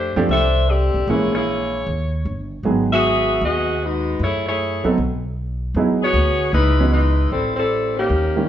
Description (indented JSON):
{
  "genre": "jazz, big band swing",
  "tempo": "154 BPM",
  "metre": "4/4",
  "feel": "swing 65% on 8ths",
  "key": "unclear",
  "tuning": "A4 = 440 Hz",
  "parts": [
    { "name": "dark saxophone section", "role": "melody", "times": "0.0-8.5 s", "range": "D#3 to E5", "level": "-19 LUFS", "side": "left 1 dB", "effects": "plate reverb" },
    { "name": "upright bass", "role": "bass", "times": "0.0-8.5 s", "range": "G1 to F#2", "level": "-21 LUFS", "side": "equal", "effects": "none" },
    { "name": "clear upright piano", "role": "accompaniment", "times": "0.2-8.5 s", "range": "D#3 to A4", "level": "-20 LUFS", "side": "right 2 dB", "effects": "none" }
  ],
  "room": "wet large studio reverb, RT60 0.9 s",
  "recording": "heard from further back in the room, nothing above 8.0 kHz",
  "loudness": "-17 LUFS",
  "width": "side -10 dB against mid",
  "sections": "0.0-8.5 A section",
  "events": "none",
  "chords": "0.0 F69; 1.1 A#m7b5; 1.9 D#7; 2.6 G#m7; 4.2 F#m9; 5.0 N.C.; 5.8 Emaj9; 6.5 C#m11; 7.3 Am7"
}